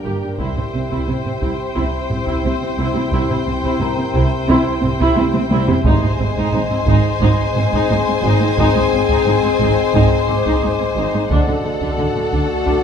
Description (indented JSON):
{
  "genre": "cinematic, suspense film score",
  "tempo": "88 BPM",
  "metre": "4/4",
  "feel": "straight",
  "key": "unclear",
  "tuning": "A4 = 440 Hz",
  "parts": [
    { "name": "muted symphonic violin section", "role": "melody", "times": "0.0-12.8 s", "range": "F#5 to Ab5", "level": "-29 LUFS", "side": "left 3 dB", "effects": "none" },
    { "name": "muted symphonic violin section", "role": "second line", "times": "0.0-12.8 s", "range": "A4 to C5", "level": "-24 LUFS", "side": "left 3 dB", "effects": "none" },
    { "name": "muted symphonic viola section", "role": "accompaniment", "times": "0.0-12.8 s", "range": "A3 to G4", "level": "-23 LUFS", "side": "right 2 dB", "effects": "none" },
    { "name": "glass harmonica", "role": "sustained chords", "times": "0.0-12.8 s", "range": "F#4 to E5", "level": "-26 LUFS", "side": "left 2 dB", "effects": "none" },
    { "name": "mellow French horn section", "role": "sustained chords", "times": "0.0-12.8 s", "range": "A3 to Ab4", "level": "-23 LUFS", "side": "left 7 dB", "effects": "none" },
    { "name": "large celesta", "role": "texture", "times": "0.0-12.8 s", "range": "Bb4 to D6", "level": "-31 LUFS", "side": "left 4 dB", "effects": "none" },
    { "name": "muted symphonic cello section", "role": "bass", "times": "0.1-12.7 s", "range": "G2 to D3", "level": "-22 LUFS", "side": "right 3 dB", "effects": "none" },
    { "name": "muted symphonic double bass section", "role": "bass", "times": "0.1-12.7 s", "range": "G1 to D2", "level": "-21 LUFS", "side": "right 3 dB", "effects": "none" },
    { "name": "taiko ensemble", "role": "drums", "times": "0.4-12.8 s", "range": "none", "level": "-22 LUFS", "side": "equal", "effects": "none" }
  ],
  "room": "wet scoring stage reverb, RT60 1.9 s",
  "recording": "minimal, uncompressed stereo recording",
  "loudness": "-14 LUFS",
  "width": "side -7 dB against mid",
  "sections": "0.0-12.8 A section",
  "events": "drum fill 5.2-5.9",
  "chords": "0.4 C; 5.9 Ab; 11.3 D"
}